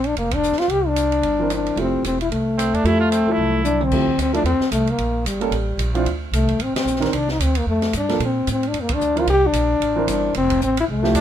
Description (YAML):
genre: jazz, small-group swing and bop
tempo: 224 BPM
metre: 4/4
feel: swing 58% on 8ths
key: F major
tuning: A4 = 442 Hz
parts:
  - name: mellow trombone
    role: melody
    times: 0.0-11.2 s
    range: G3 to G4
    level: -20 LUFS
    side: left 2 dB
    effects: none
  - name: upright bass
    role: bass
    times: 0.0-11.2 s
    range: E1 to Bb2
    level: -24 LUFS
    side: right 1 dB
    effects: none
  - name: open jazz drum kit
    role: drums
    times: 0.0-11.2 s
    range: crash cymbal, hi-hat, kick drum, ride cymbal, rim click, snare drum, toms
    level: -28 LUFS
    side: right 1 dB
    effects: none
  - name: warm baby grand piano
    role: accompaniment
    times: 1.4-11.2 s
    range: Eb3 to Bb4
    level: -24 LUFS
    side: right 4 dB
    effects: none
  - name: clear trumpet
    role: second line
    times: 2.6-3.9, 11.2 s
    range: C4 to F4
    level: -24 LUFS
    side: right 4 dB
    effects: none
room: light reverb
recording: minimal, uncompressed stereo recording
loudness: -17 LUFS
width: side -10 dB against mid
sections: 0.0-3.9 A section; 3.9-11.2 A section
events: band accent 0.3, 6.7, 8.9; drum fill 3.4-3.9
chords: 0.0 Bb; 0.7 C9; 1.8 Fmaj9; 3.9 Fmaj7; 5.0 Gdim; 5.5 A5; 6.1 D5; 7.1 Csus2; 7.7 F69; 8.2 Bbmaj7; 9.3 C9; 10.3 Fmaj9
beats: 0.16 0.42 | 0.69 0.96 1.23 1.50 | 1.77 2.03 2.30 2.57 | 2.84 3.11 3.38 3.64 | 3.91 4.18 4.45 4.72 | 4.99 5.25 5.52 5.79 | 6.06 6.33 6.59 6.86 | 7.13 7.40 7.67 7.93 | 8.20 8.47 8.74 9.01 | 9.28 9.54 9.81 10.08 | 10.35 10.62 10.88 11.15